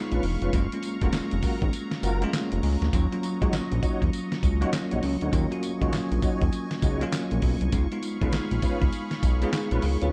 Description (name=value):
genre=R&B, new jack swing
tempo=100 BPM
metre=4/4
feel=swing 63% on 16ths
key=Eb minor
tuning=A4 = 440 Hz
part: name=bell-like tine electric piano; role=accompaniment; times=0.0-10.1 s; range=Gb3 to Db5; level=-32 LUFS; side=equal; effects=none
part: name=phased analog pad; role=sustained chords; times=0.0-10.1 s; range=Gb3 to Db6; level=-40 LUFS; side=equal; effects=phaser, chorus
part: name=tonewheel organ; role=stabs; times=0.1-10.1 s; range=Db4 to Db5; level=-35 LUFS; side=equal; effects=chorus vibrato, slow rotary speaker
part: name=fat analog bass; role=bass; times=0.1-10.1 s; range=Fb1 to Eb2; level=-29 LUFS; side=equal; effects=none
part: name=dusty soul sampler-style drum kit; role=drums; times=0.1-10.1 s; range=handclaps, hi-hat, kick drum, snare drum, tambourine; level=-30 LUFS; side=equal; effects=none
room=light reverb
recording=none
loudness=-26 LUFS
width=mono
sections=0.0-10.1 A section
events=kick muted 1.7-2.9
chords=0.0 Db7; 0.5 Gbmaj7; 2.9 Ebm7; 7.7 Db7